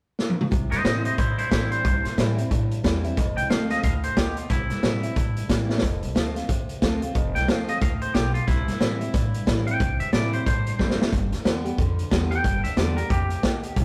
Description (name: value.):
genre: rockabilly.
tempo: 181 BPM.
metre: 4/4.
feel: swing 61% on 8ths.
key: C major.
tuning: A4 = 440 Hz.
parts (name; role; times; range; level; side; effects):
vintage drum kit; drums; 0.2-13.8 s; hi-hat, kick drum, snare drum, toms; -26 LUFS; equal; none.
picked steel-string acoustic guitar; accompaniment; 0.5-13.8 s; F2 to G4; -33 LUFS; equal; none.
upright bass; bass; 0.5-13.8 s; F1 to A2; -29 LUFS; equal; none.
twangy electric guitar; melody; 0.7-13.8 s; E4 to G5; -31 LUFS; equal; spring reverb.
room: light reverb.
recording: rough rehearsal-room recording, warm saturation.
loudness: -24 LUFS.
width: mono.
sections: 0.5-13.8 A section.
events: drum fill 0.2-0.5, 5.7, 10.8-11.1.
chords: 0.0 N.C.; 0.5 C; 3.2 F; 4.5 C; 5.8 F; 8.5 C; 11.1 G.